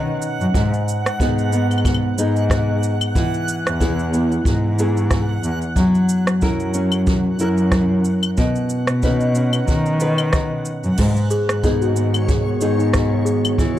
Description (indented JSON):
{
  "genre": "folktronica",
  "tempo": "92 BPM",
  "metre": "4/4",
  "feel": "swing 56% on 16ths",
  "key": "G# minor",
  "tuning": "A4 = 440 Hz",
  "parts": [
    { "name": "nylon-string guitar", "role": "arpeggios", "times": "0.0-13.8 s", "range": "G#2 to B4", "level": "-21 LUFS", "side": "equal", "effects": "tape echo" },
    { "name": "dark cello", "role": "bass", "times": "0.0-13.6 s", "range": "E2 to D#3", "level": "-20 LUFS", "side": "equal", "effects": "none" },
    { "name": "backwards swelling texture", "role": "texture", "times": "0.0-13.8 s", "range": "C#5 to F#5", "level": "-31 LUFS", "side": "right 4 dB", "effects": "built-in reverb" },
    { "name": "organic electronic drum kit", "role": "drums", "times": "0.2-13.7 s", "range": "cabasa, claves, crash cymbal, rim click", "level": "-25 LUFS", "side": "equal", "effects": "none" },
    { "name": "kick drum", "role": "drums", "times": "0.5-13.7 s", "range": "none", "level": "-22 LUFS", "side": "equal", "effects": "none" },
    { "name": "warbly tape-like pad", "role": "sustained chords", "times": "11.6-13.8 s", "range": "D#3 to F#4", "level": "-26 LUFS", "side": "equal", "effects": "chorus, built-in reverb" },
    { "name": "worn celesta", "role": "second line", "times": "11.3-13.8 s", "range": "D#4 to G#4", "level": "-23 LUFS", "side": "equal", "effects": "tape echo" }
  ],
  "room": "little or no reverb",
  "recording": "none",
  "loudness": "-16 LUFS",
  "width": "side -12 dB against mid",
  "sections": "0.0-13.8 A section",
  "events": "none",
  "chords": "0.0 Badd9; 0.5 G#m7; 3.2 Eadd9; 5.8 F#7; 8.4 Badd9; 11.0 G#m7"
}